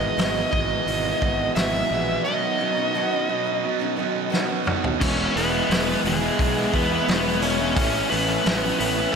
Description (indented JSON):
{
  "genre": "quiet-loud alternative rock",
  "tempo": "87 BPM",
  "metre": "4/4",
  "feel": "straight",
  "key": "E major",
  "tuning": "A4 = 441 Hz",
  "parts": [
    { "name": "smooth overdriven lead guitar", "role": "melody", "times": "0.0-9.2 s", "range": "G#3 to E5", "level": "-24 LUFS", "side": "left 1 dB", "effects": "digital delay" },
    { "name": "picked steel-string acoustic guitar", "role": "arpeggios", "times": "0.0-5.0 s", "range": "G#2 to D#4", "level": "-30 LUFS", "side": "left 4 dB", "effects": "none" },
    { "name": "thick fuzz guitar", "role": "riff", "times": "0.0-9.2 s", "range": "E2 to E4", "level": "-26 LUFS", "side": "right 11 dB", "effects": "distortion, slapback echo" },
    { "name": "fuzz fingered electric bass", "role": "bass", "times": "0.0-9.0 s", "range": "E1 to E2", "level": "-30 LUFS", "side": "equal", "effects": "overdrive" },
    { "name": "loose indie drum kit", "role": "drums", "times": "0.2-9.0 s", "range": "crash cymbal, hi-hat, kick drum, snare drum, toms", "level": "-26 LUFS", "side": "equal", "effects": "none" },
    { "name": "raw garage guitar", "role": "riff", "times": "5.0-9.2 s", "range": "A2 to E4", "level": "-27 LUFS", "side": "left 11 dB", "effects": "overdrive, slapback echo" }
  ],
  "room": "wet lush hall reverb, RT60 2.8 s",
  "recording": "big arena sound",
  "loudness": "-20 LUFS",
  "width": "side -6 dB against mid",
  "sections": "0.0-5.0 A section; 5.0-9.2 B section",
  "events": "drum fill 4.3-5.0",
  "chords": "0.0 Emaj7/G#; 2.3 Badd9; 5.0 E; 7.8 Aadd9"
}